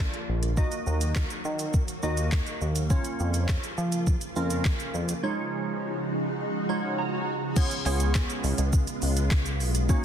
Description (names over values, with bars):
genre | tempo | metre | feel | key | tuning
dance-pop | 103 BPM | 4/4 | straight | unclear | A4 = 435 Hz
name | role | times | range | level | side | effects
glassy digital keys | accompaniment | 0.0-10.0 s | G#3 to A#5 | -32 LUFS | right 2 dB | chorus, sidechain pumping
soft string machine | sustained chords | 0.0-10.0 s | C#3 to F#4 | -33 LUFS | right 1 dB | phaser, ensemble chorus, sidechain pumping
chorused synth bass | bass | 0.0-10.0 s | A#1 to E#3 | -27 LUFS | equal | sidechain pumping
smooth R&B drum kit | drums | 0.1-10.0 s | crash cymbal, handclaps, hi-hat, kick drum, shaker, snare drum | -27 LUFS | equal | none
swell | sound effects | 5.8-7.6 s | none | -36 LUFS | left 1 dB | none
group handclap | percussion | 7.9-9.4 s | none | -46 LUFS | left 6 dB | none
room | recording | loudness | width
light reverb, digital ambience | dense, heavily limited modern master | -25 LUFS | side -9 dB against mid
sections
0.0-7.6 A section; 7.6-10.0 B section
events
break 5.2-7.6; swell 5.8-7.6; synth keys fill 6.7-7.6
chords
0.0 A#; 0.6 D#m; 2.9 A#m; 5.2 C#add9; 7.6 C#7